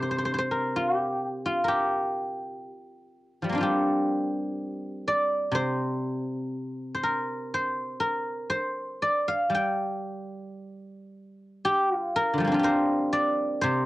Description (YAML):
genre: chinese traditional, Chinese solo plucked strings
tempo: 55-63 BPM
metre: 4/4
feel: rubato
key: G yu mode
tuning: A4 = 439 Hz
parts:
  - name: guzheng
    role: solo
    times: 0.0-13.9 s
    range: C3 to G5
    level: -25 LUFS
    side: equal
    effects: none
room: little or no reverb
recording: home recording on cassette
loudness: -25 LUFS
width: side -17 dB against mid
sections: 0.0-11.6 A section; 11.6-13.9 B section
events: none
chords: none